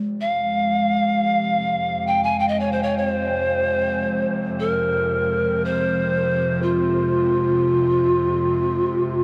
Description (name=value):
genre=world meditative, free-time meditation music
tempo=free time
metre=none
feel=none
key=F minor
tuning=A4 = 440 Hz
part: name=bowed-like drone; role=drone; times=0.5-9.2 s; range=F2 to C3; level=-29 LUFS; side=equal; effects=built-in reverb
part: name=bronze singing bowl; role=texture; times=0.0-7.1 s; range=Ab3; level=-30 LUFS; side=equal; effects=none
part: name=breathy reedy pan flute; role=melody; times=0.2-9.2 s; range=F4 to Ab5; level=-22 LUFS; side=equal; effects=delay
room=wet huge ambient reverb, RT60 8.9 s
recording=dark, warm production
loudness=-21 LUFS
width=mono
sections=0.0-9.2 A section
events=none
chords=none